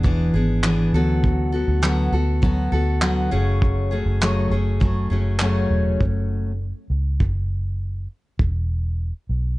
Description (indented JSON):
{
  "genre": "acoustic pop",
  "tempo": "101 BPM",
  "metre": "4/4",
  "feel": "straight",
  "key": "F# minor",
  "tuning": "A4 = 440 Hz",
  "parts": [
    { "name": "picked steel-string acoustic guitar", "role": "accompaniment", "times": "0.0-6.5 s", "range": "F#2 to A4", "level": "-22 LUFS", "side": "left 1 dB", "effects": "plate reverb" },
    { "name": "vintage muted fingered electric bass", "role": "bass", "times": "0.0-9.6 s", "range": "E1 to D2", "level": "-21 LUFS", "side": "equal", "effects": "none" },
    { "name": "cloth-damped thuddy drum kit", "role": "drums", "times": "0.0-8.5 s", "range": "handclaps, kick drum", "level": "-21 LUFS", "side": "equal", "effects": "none" }
  ],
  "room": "light reverb",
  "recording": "dark, warm production, nothing above 11.0 kHz",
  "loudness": "-19 LUFS",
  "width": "side -20 dB against mid",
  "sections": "0.0-6.0 A section; 6.0-9.6 B section",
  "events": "none",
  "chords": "0.0 E7; 0.9 D6; 3.3 F#madd9; 6.0 F#5; 8.4 E5"
}